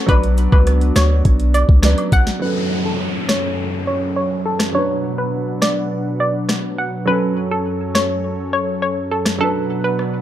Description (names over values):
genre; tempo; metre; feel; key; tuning
dancehall; 103 BPM; 4/4; straight; F# minor; A4 = 440 Hz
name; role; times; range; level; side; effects
warm grand piano; accompaniment; 0.0-10.2 s; F#3 to D5; -24 LUFS; right 2 dB; low-pass filter
warm analog pad; sustained chords; 0.0-10.2 s; F#2 to F#5; -24 LUFS; equal; chorus, sidechain pumping, low-pass filter
hollow square pluck; melody; 0.1-10.1 s; A4 to F#5; -22 LUFS; equal; chorus, low-pass filter, tape echo
warm 808-style bass; bass; 0.1-2.3 s; B1 to D2; -15 LUFS; equal; none
afro-pop drum kit; drums; 0.1-10.1 s; hi-hat, kick drum, rim click, snare drum; -17 LUFS; equal; none
woodblock and cabasa; percussion; 0.1-2.3 s; none; -31 LUFS; equal; none
downlifter; sound effects; 2.4-7.1 s; none; -29 LUFS; right 1 dB; none
room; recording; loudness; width
little or no reverb; dark, warm production; -15 LUFS; side -11 dB against mid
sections
0.0-2.4 A section; 2.4-10.2 B section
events
filter sweep 2.4-10.2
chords
0.1 Bm; 2.4 F#m; 4.7 Bm; 7.1 F#m; 9.4 Bm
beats
| 0.09 0.67 1.25 1.83 | 2.42 3.00 3.58 4.16 | 4.75 5.33 5.91 6.49 | 7.08 7.66 8.24 8.82 | 9.41 9.99